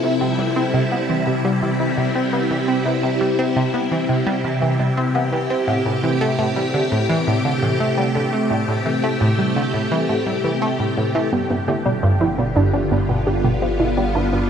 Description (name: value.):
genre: ambient, sequencer-driven space music.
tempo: 85 BPM.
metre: 4/4.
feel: straight.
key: C major.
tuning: A4 = 436 Hz.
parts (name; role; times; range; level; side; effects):
phased string machine; sustained chords; 0.0-14.5 s; C3 to A4; -20 LUFS; equal; ensemble chorus, phaser.
analog pluck; riff; 0.0-14.4 s; G2 to C4; -21 LUFS; equal; chorus, phaser, tape echo.
wide unison pluck; arpeggios; 11.3-14.4 s; B2 to G4; -22 LUFS; right 2 dB; auto-pan, cassette tape, tape echo.
round analog bass; bass; 11.3-14.5 s; G1; -27 LUFS; equal; none.
room: wet huge ambient reverb, RT60 7.8 s.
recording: none.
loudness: -17 LUFS.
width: side -8 dB against mid.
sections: 0.0-11.3 A section; 11.3-14.5 B section.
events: none.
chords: 0.0 C; 5.7 Am7; 11.3 G7.